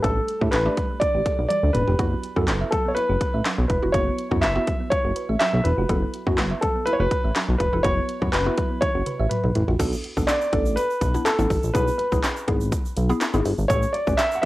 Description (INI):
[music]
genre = dance-pop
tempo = 123 BPM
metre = 4/4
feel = straight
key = unclear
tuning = A4 = 440 Hz
[part]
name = dark baby grand piano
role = melody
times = 0.0-14.5 s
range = A4 to F#5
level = -24 LUFS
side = equal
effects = cassette tape
[part]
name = mallet-like synth pluck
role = accompaniment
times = 0.0-14.5 s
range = A3 to B4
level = -29 LUFS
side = equal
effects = chorus, phaser, sidechain pumping, cassette tape
[part]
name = thumb-piano-like synth pluck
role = arpeggios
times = 0.0-9.7 s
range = F#3 to E5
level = -32 LUFS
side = right 6 dB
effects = chorus, sidechain pumping, cassette tape, analog delay
[part]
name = chorused synth bass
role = bass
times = 0.0-14.5 s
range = E1 to A2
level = -23 LUFS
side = equal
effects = sidechain pumping
[part]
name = house drum kit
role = drums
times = 0.0-14.5 s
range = crash cymbal, handclaps, hi-hat, kick drum, snare drum, toms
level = -25 LUFS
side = equal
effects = overdrive
[part]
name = tube shaker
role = percussion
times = 9.8-14.4 s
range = none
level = -43 LUFS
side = right 8 dB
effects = none
[sound]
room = light reverb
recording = home recording on cassette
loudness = -20 LUFS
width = side -17 dB against mid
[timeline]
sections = 0.0-9.8 A section; 9.8-14.5 B section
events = drum fill 1.5-2.0, 8.8-9.8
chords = 0.0 A7sus4; 2.0 F#7sus4; 9.8 Bm7; 11.7 E; 13.7 A7